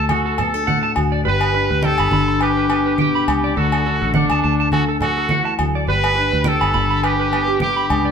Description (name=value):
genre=highlife guitar band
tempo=104 BPM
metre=4/4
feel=swing 54% on 16ths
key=G major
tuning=A4 = 440 Hz
part: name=brilliant trumpet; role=melody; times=0.0-8.1 s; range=D4 to B4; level=-21 LUFS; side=equal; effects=none
part: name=fingerpicked plugged-in steel-string acoustic guitar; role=accompaniment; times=0.0-8.1 s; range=G2 to G4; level=-22 LUFS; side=left 4 dB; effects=none
part: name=electric guitar at the edge of break-up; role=arpeggios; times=0.0-8.1 s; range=G4 to B5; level=-22 LUFS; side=right 5 dB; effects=spring reverb
part: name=fingered electric bass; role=bass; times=0.0-8.1 s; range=G1 to D2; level=-22 LUFS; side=left 1 dB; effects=none
part: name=agogo bells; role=percussion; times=0.1-8.1 s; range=none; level=-24 LUFS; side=equal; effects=none
part: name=congas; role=percussion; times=0.1-7.8 s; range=none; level=-22 LUFS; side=right 2 dB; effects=none
room=wet studio ambience, RT60 0.5 s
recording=band playing live in one room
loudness=-15 LUFS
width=side -7 dB against mid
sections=0.0-8.1 A section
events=none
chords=0.0 D; 1.3 G; 3.6 D; 5.9 G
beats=0.10 0.68 | 1.25 1.83 2.41 2.99 | 3.57 4.15 4.72 5.30 | 5.88 6.46 7.03 7.61